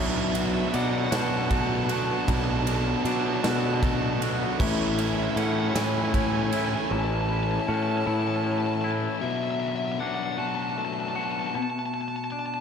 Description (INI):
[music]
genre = post-rock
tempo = 52 BPM (dotted quarters)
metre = 6/8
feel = straight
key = unclear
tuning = A4 = 438 Hz
[part]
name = dark smooth lead guitar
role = melody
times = 0.0-12.6 s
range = E5 to A5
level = -31 LUFS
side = right 1 dB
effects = overdrive, ping-pong delay
[part]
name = soft additive organ-like pad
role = sustained chords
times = 0.0-9.2 s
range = D4 to A5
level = -38 LUFS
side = right 1 dB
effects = none
[part]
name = twangy electric guitar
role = arpeggios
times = 0.0-12.6 s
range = A2 to F#4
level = -33 LUFS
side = left 3 dB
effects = wide subtle chorus, ping-pong delay
[part]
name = thick fuzz guitar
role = riff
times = 0.0-11.5 s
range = A2 to F#4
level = -31 LUFS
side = left 11 dB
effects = distortion
[part]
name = tight distorted guitar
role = riff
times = 0.0-6.9 s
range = A2 to F#4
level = -31 LUFS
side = right 11 dB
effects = distortion
[part]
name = fuzz picked electric bass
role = bass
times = 0.0-9.1 s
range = A1 to B2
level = -28 LUFS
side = equal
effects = overdrive
[part]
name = big rock drum kit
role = drums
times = 0.3-6.7 s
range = crash cymbal, kick drum, ride cymbal, snare drum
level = -30 LUFS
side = right 1 dB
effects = none
[sound]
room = moderate lush hall reverb, RT60 2.6 s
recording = dreamy mix soaked in reverb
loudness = -24 LUFS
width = side -7 dB against mid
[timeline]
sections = 0.0-12.6 A section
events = none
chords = 0.0 Bm7; 4.6 Amaj7; 9.2 Bm7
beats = 1.12 | 2.28 3.44 | 4.59 5.75 | 6.91 8.07 | 9.23 10.39 | 11.55